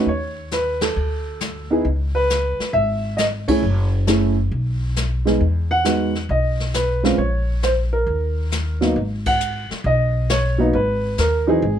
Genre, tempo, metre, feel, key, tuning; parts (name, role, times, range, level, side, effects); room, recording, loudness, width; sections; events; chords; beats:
jazz piano trio; 135 BPM; 4/4; swing 67% on 8ths; G# minor; A4 = 439 Hz
dark upright piano; melody; 0.0-11.8 s; E3 to F#5; -20 LUFS; right 1 dB
upright bass; bass; 0.0-11.8 s; F#1 to E2; -21 LUFS; left 1 dB
jazz brush drum kit; drums; 0.1-11.8 s; brushed snare drum, hi-hat, kick drum, ride cymbal, snare drum; -27 LUFS; left 3 dB
light reverb; -18 LUFS; side -9 dB against mid
0.0-11.8 A section
band accent 0.7, 3.4, 9.2
0.1 Badd9/D#; 1.0 D5; 1.9 C#m7; 3.6 F#m9; 4.5 B5; 5.4 Emaj9; 7.2 A#m; 8.1 D#5; 9.0 G#m7
| 0.07 0.52 0.96 1.41 | 1.85 2.30 2.74 3.19 | 3.63 4.08 4.52 4.96 | 5.41 5.85 6.30 6.74 | 7.19 7.63 8.08 8.52 | 8.96 9.41 9.85 10.30 | 10.74 11.18 11.63